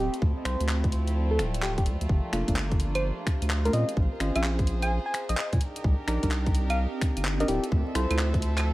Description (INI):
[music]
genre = UK garage, two-step garage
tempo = 128 BPM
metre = 4/4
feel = swing 65% on 16ths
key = unclear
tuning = A4 = 435 Hz
[part]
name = soft struck synth lead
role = melody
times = 0.0-8.1 s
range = G4 to Ab5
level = -33 LUFS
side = left 1 dB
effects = chorus, tape echo
[part]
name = warm studio violin section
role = sustained chords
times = 0.0-8.7 s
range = A3 to E5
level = -38 LUFS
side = right 1 dB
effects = sidechain pumping
[part]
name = saturated sub bass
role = bass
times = 0.0-8.7 s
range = D1 to Bb2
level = -27 LUFS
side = equal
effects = none
[part]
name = warbly tape-like pad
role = texture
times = 0.0-8.7 s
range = F3 to Eb6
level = -38 LUFS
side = right 1 dB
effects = chorus, built-in reverb, phaser, sidechain pumping
[part]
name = garage drum kit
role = drums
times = 0.1-8.6 s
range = claves, finger snaps, handclaps, hi-hat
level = -33 LUFS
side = equal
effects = studio reverb
[part]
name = electronic kick drum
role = drums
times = 0.2-8.4 s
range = none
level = -26 LUFS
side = equal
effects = studio reverb
[part]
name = deep mellow chord stab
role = stabs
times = 2.3-8.7 s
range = A3 to D5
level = -33 LUFS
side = equal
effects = chorus, dub echo
[sound]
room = light reverb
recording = echo-heavy mix, vinyl crackle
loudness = -24 LUFS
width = side -18 dB against mid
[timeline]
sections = 0.0-8.7 A section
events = none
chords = 0.0 Dm7; 2.1 Gm7; 3.7 Bbm7; 5.6 Cm7; 7.5 Dm7